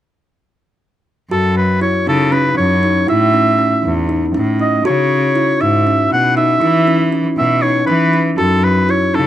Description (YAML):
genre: contemporary instrumental, chamber music in an uneven meter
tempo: 238 BPM (eighths)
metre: 7/8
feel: straight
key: F# dorian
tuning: A4 = 441 Hz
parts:
  - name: clear oboe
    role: melody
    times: 1.3-9.3 s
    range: A4 to F#5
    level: -15 LUFS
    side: right 1 dB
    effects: none
  - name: kalimba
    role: arpeggios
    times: 1.3-9.3 s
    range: C#4 to F#4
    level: -17 LUFS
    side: equal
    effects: none
  - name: rich cello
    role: bass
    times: 1.3-9.3 s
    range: E2 to E3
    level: -17 LUFS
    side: equal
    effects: none
room: light reverb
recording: none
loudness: -12 LUFS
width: side -12 dB against mid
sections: 1.3-9.3 A section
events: none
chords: 1.3 F#5; 3.1 A; 4.9 C#m; 6.6 E5; 8.4 F#5